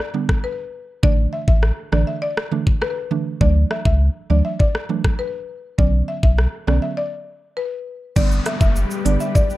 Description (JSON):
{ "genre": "dancehall", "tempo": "101 BPM", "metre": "4/4", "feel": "straight", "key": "unclear", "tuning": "A4 = 440 Hz", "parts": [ { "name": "buzzing marimba with medium mallets", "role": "melody", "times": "0.0-9.6 s", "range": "B4 to E5", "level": "-26 LUFS", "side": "left 3 dB", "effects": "slapback echo" }, { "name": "island pop drum kit", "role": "drums", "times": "0.0-9.6 s", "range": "crash cymbal, hi-hat, kick drum, rim click, shaker", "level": "-19 LUFS", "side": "equal", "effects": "none" }, { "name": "mallet-like synth pluck", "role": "accompaniment", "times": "0.1-9.3 s", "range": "D3 to D4", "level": "-25 LUFS", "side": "right 6 dB", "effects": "chorus" }, { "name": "warm sub bass", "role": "bass", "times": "1.0-9.2 s", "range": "F#1 to D2", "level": "-17 LUFS", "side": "equal", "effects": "none" }, { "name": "lush unison pad", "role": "sustained chords", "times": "8.5-9.6 s", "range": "G3 to D5", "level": "-28 LUFS", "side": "left 4 dB", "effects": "chorus, phaser, sidechain pumping" }, { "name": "downlifter", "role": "sound effects", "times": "8.2-9.6 s", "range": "none", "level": "-30 LUFS", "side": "left 1 dB", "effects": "none" } ], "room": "little or no reverb", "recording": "dark, warm production", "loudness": "-17 LUFS", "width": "side -16 dB against mid", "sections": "0.0-8.2 A section; 8.2-9.6 B section", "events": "break 7.0-8.2", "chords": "0.0 G; 1.0 Asus4; 3.4 Dadd9; 5.8 Bmadd9; 8.2 G" }